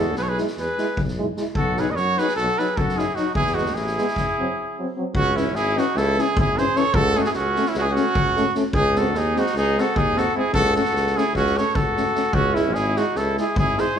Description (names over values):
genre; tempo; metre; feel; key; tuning
balkan folk, Balkan brass band; 300 BPM (eighths); 9/8; straight; E major, C# harmonic minor from 5.1 s; A4 = 439 Hz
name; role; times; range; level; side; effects
warm cornet; melody; 0.0-14.0 s; E4 to D#5; -22 LUFS; right 2 dB; none
mellow trumpet; second line; 0.0-14.0 s; C#4 to B4; -29 LUFS; left 3 dB; none
clear euphonium; accompaniment; 0.0-14.0 s; E3 to A3; -30 LUFS; right 4 dB; none
mellow French horn; accompaniment; 0.0-14.0 s; B3 to E4; -28 LUFS; left 5 dB; none
warm tuba; bass; 0.0-13.9 s; G#1 to F#2; -26 LUFS; equal; none
street-band drum kit; percussion; 0.2-14.0 s; kick drum, snare drum; -27 LUFS; left 1 dB; none
room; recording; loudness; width
moderate large studio reverb, RT60 1.1 s; band playing live in one room; -19 LUFS; side -8 dB against mid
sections
0.0-5.1 A section; 5.1-14.0 B section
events
break 4.2-5.1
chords
0.0 E; 1.5 B; 3.3 E; 4.1 G#7; 5.1 C#m; 6.9 F#m/C#; 8.7 G#/C#; 10.5 F#m/C#; 12.3 C#m